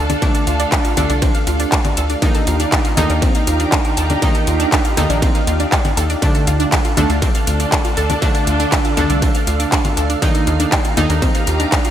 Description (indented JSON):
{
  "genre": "melodic techno",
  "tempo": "120 BPM",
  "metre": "4/4",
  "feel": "straight",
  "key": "D phrygian",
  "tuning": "A4 = 439 Hz",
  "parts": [
    { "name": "deep dark ambient pad", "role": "sustained chords", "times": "0.0-11.9 s", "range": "D4 to F5", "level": "-26 LUFS", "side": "right 1 dB", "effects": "chorus, built-in reverb, vintage 12-bit sampler grit, sidechain pumping" },
    { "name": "wide unison pluck", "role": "arpeggios", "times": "0.0-11.9 s", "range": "C4 to F6", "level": "-23 LUFS", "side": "right 2 dB", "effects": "analog chorus, sidechain pumping, digital delay" },
    { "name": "synth brass stab", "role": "stabs", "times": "0.0-11.9 s", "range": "D3 to Eb4", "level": "-22 LUFS", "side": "equal", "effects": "chorus, sidechain pumping, digital delay" },
    { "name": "tight sequencer bass", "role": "bass", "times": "0.0-11.7 s", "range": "Bb1 to Eb2", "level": "-19 LUFS", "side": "equal", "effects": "sidechain pumping" },
    { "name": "dark symphonic string section", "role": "texture", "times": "0.0-11.9 s", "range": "D4 to Bb5", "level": "-25 LUFS", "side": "right 1 dB", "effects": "sidechain pumping" },
    { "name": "techno drum kit", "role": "drums", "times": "0.1-11.9 s", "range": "congas, handclaps, hi-hat, ride cymbal", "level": "-21 LUFS", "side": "left 1 dB", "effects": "gated reverb" },
    { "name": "electronic kick drum", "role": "drums", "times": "0.2-11.8 s", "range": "none", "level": "-18 LUFS", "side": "equal", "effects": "distortion" }
  ],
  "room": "light reverb, digital ambience",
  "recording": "bright 1980s-style digital production",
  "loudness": "-13 LUFS",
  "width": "side -10 dB against mid",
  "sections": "0.0-11.9 A section",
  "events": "none",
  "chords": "0.0 Dm; 2.2 Ebadd9; 6.2 Dm; 10.2 Ebadd9"
}